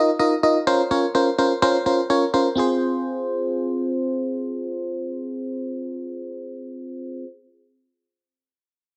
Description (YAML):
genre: pop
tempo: 126 BPM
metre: 4/4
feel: straight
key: F minor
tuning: A4 = 441 Hz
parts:
  - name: FM electric piano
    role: accompaniment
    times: 0.0-7.3 s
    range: C4 to Eb5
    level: -23 LUFS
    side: equal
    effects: chorus
room: moderate plate reverb, RT60 1.2 s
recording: heavily compressed radio sound, multiband compression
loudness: -22 LUFS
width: mono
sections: 0.0-2.6 A section; 2.6-6.4 B section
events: none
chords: 0.0 Ebsus2; 0.7 Bbmadd9; 2.6 Fm